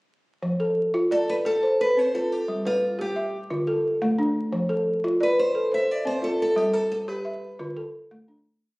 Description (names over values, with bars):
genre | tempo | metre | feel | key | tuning
west african traditional, West African string and xylophone music | 117 BPM (dotted quarters) | 12/8 | straight | F lydian | A4 = 442 Hz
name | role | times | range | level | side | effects
balafon | arpeggios | 0.4-8.8 s | D3 to E5 | -24 LUFS | equal | none
picked old ladder-braced acoustic guitar | melody | 1.1-8.1 s | F4 to E5 | -24 LUFS | equal | none
room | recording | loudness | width
moderate recital hall reverb, RT60 1.5 s | recorded on a phone in the room, studio reverb, vinyl crackle | -22 LUFS | side -23 dB against mid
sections
0.4-8.6 A section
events
fade-out 6.6-8.6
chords
0.4 F; 2.5 G; 3.5 Dm; 4.5 F; 6.6 G; 7.6 Dm